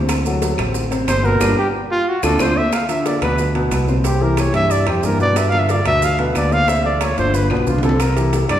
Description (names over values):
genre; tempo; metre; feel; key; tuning
Afro-Cuban jazz; 182 BPM; 4/4; straight; unclear; A4 = 440 Hz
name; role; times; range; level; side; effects
warm baby grand piano; accompaniment; 0.0-8.6 s; B2 to C5; -21 LUFS; left 1 dB; none
fingered electric bass; bass; 0.0-8.6 s; G1 to G2; -20 LUFS; equal; none
bongos; percussion; 0.1-8.6 s; none; -30 LUFS; left 3 dB; none
claves; percussion; 0.1-8.6 s; none; -31 LUFS; left 2 dB; none
congas; percussion; 0.1-8.6 s; none; -28 LUFS; left 2 dB; none
maracas; percussion; 0.1-8.6 s; none; -34 LUFS; right 6 dB; none
timbales; percussion; 0.1-8.6 s; none; -27 LUFS; right 5 dB; none
mellow trumpet; melody; 1.1-8.6 s; D4 to F5; -19 LUFS; right 1 dB; none
room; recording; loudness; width
wet recital hall reverb, RT60 1.4 s; recorded in a church or concert hall; -15 LUFS; side -11 dB against mid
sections
0.0-2.7 A section; 2.7-8.6 A section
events
trumpet solo 0.0-8.6; band accent 1.4-2.7; drum fill 1.7-2.7, 7.3-8.0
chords
0.1 D7; 1.4 G; 2.1 D5; 2.7 Cmaj7sus2; 4.0 C; 5.4 G7; 6.7 Dm7; 7.3 G7; 8.0 C7